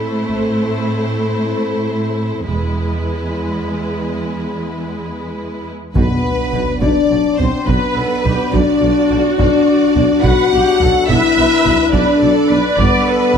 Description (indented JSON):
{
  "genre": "cinematic, epic orchestral film score",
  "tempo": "70 BPM (dotted quarters)",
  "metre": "12/8",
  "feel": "straight",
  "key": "B phrygian",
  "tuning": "A4 = 440 Hz",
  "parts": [
    { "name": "warm symphonic violin section", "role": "melody", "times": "0.0-13.4 s", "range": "B4 to F#5", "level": "-24 LUFS", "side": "left 3 dB", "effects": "none" },
    { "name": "warm symphonic violin section", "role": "second line", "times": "0.0-13.4 s", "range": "E4 to F#5", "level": "-22 LUFS", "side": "right 1 dB", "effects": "none" },
    { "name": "warm symphonic viola section", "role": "accompaniment", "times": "0.0-13.4 s", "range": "G#3 to D5", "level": "-22 LUFS", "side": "right 2 dB", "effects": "none" },
    { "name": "mellow French horn section", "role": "sustained chords", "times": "0.0-13.4 s", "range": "B3 to A4", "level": "-17 LUFS", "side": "left 4 dB", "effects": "none" },
    { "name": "dark symphonic cello section", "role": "bass", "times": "0.0-13.4 s", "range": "E2 to B2", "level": "-23 LUFS", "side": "right 3 dB", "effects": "none" },
    { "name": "taiko ensemble", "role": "drums", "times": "0.3-0.6, 6.0-13.4 s", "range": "none", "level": "-21 LUFS", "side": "equal", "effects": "none" },
    { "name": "rich symphonic double bass section", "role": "bass", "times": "2.5-13.4 s", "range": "E1 to B1", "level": "-23 LUFS", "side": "right 3 dB", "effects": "none" },
    { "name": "warm trombone section", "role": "sustained chords", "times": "5.9-13.4 s", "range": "F#3 to D4", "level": "-26 LUFS", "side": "right 6 dB", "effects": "none" },
    { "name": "mellow tuba", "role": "bass", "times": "6.0-13.4 s", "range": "G1 to B1", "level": "-24 LUFS", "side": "right 4 dB", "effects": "none" },
    { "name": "timpani", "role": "percussion", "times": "6.0-6.8 s", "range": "B2", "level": "-24 LUFS", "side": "left 1 dB", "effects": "none" },
    { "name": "sub drop", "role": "sound effects", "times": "6.1-9.4 s", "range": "none", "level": "-27 LUFS", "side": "equal", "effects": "none" }
  ],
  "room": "moderate scoring stage reverb, RT60 2.0 s",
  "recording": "none",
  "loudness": "-13 LUFS",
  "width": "side -7 dB against mid",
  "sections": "0.0-6.0 A section; 6.0-13.4 B section",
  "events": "build-up 0.0-6.0; impact 6.0-9.4",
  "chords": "0.0 Am; 2.5 E; 6.0 Bm; 12.8 G",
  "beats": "0.73 1.59 | 2.46 3.34 4.21 5.08 | 5.96 6.82 7.67 8.53 | 9.39 10.24 11.09 11.94 | 12.79"
}